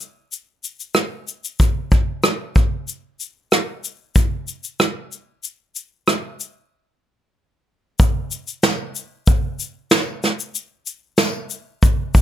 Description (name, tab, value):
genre	pop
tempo	94 BPM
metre	4/4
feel	straight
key	none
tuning	none
part	soft brush drum kit	drums	0.0-12.2 s	kick drum, rim click, shaker, snare drum	-17 LUFS	equal	none
part	tambourine	percussion	8.6-11.3 s	none	-31 LUFS	left 5 dB	none
room	light reverb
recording	none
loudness	-18 LUFS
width	side -11 dB against mid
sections	0.0-8.0 A section; 8.0-12.2 B section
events	break 6.7-8.0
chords	none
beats	| 0.32 0.96 1.60 2.24 | 2.88 3.52 4.16 4.80 | 5.44 6.08 6.72 7.36 | 8.00 8.64 9.28 9.92 | 10.55 11.19 11.83